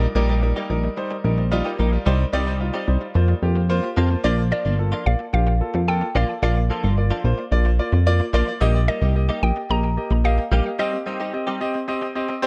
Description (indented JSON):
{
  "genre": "pop",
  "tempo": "110 BPM",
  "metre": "4/4",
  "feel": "straight",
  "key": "Bb major",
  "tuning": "A4 = 442 Hz",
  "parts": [
    { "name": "warm grand piano", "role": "accompaniment", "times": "0.0-12.5 s", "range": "G3 to A5", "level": "-27 LUFS", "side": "equal", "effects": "tape echo" },
    { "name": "direct-recorded clean electric guitar", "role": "riff", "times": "0.0-12.3 s", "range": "F3 to G4", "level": "-32 LUFS", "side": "equal", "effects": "ensemble chorus" },
    { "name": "chorused synth bass", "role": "bass", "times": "0.0-10.6 s", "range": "G1 to F2", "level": "-21 LUFS", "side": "equal", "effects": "none" },
    { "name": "mallet-like synth pluck", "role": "melody", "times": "4.5-12.4 s", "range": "D5 to Bb5", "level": "-30 LUFS", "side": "equal", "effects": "chorus, tape echo" }
  ],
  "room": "little or no reverb",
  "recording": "echo-heavy mix",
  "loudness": "-21 LUFS",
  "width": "mono",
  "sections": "0.0-4.2 A section; 4.2-12.5 B section",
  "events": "grand piano fill 3.4-4.2, 12.2-12.5; break 10.8-12.5",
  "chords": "0.0 Eb/Bb; 2.1 Cm; 3.2 Fsus4; 4.2 Bb; 8.6 Eb/Bb; 10.8 Cm"
}